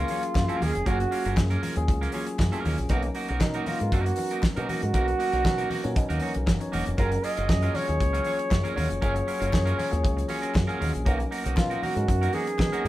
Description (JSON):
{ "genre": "disco", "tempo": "118 BPM", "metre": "4/4", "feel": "straight", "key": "F# major", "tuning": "A4 = 440 Hz", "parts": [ { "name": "breathy flugelhorn", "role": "melody", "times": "0.0-12.9 s", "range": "D#4 to D#5", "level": "-29 LUFS", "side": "right 1 dB", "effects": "none" }, { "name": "semi-hollow electric guitar", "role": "accompaniment", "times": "0.0-12.9 s", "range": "F#3 to C#5", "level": "-33 LUFS", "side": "right 4 dB", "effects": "none" }, { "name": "tine electric piano", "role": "accompaniment", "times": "0.0-12.9 s", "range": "F#3 to E#5", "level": "-33 LUFS", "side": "left 2 dB", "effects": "none" }, { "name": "fingered electric bass with an envelope filter", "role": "bass", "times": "0.0-12.9 s", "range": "E1 to B2", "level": "-28 LUFS", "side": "equal", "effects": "none" }, { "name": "damped 70s drum kit", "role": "drums", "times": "0.1-12.9 s", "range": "hi-hat, kick drum, snare drum", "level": "-27 LUFS", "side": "equal", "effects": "none" }, { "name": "congas", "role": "percussion", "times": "0.1-12.9 s", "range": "none", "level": "-38 LUFS", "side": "left 2 dB", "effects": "none" }, { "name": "group handclap", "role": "percussion", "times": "0.4-12.7 s", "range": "none", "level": "-41 LUFS", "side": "left 3 dB", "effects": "none" } ], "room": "moderate studio reverb, RT60 0.6 s", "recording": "band playing live in one room", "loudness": "-23 LUFS", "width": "side -15 dB against mid", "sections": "0.0-12.9 A section", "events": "none", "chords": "0.0 F#maj7; 2.9 Bmaj7; 7.0 F#maj7; 11.1 Bmaj7", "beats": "0.35 | 0.86 1.37 1.88 2.39 | 2.90 3.41 3.92 4.43 | 4.94 5.45 5.96 6.47 | 6.98 7.49 8.00 8.51 | 9.02 9.53 10.04 10.55 | 11.06 11.57 12.08 12.59" }